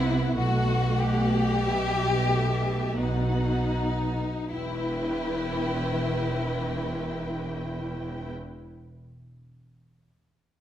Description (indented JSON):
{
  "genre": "classical, slow romantic movement for symphony orchestra",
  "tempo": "38-51 BPM",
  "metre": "3/4",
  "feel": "rubato",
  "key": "E minor",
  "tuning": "A4 = 440 Hz",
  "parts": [
    { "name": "dark studio violin section", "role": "melody", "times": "0.0-8.3 s", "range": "E5 to G5", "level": "-38 LUFS", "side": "left 2 dB", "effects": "none" },
    { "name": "rich chamber violin section", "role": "second line", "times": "0.0-8.3 s", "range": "D#4 to G4", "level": "-30 LUFS", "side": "left 3 dB", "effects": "none" },
    { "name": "dark studio viola section", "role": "accompaniment", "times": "0.0-8.3 s", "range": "E3 to B4", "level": "-32 LUFS", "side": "right 1 dB", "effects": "none" },
    { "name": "rich studio cello section", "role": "bass", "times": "0.0-8.3 s", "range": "E2 to C3", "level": "-30 LUFS", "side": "right 1 dB", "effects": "none" },
    { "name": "rich studio double bass section", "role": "bass", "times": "0.0-8.3 s", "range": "E1 to C2", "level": "-31 LUFS", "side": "right 1 dB", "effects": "none" }
  ],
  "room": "wet recital hall reverb, RT60 1.5 s",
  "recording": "heard from further back in the room",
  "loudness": "-24 LUFS",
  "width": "side -11 dB against mid",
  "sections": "0.0-4.5 A section; 4.5-9.1 B section",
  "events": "slowing down 0.0-4.5",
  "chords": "0.4 Em/B; 3.0 B; 4.5 Em",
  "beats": "| 0.36 1.60 2.97 | 4.51 6.00 7.55"
}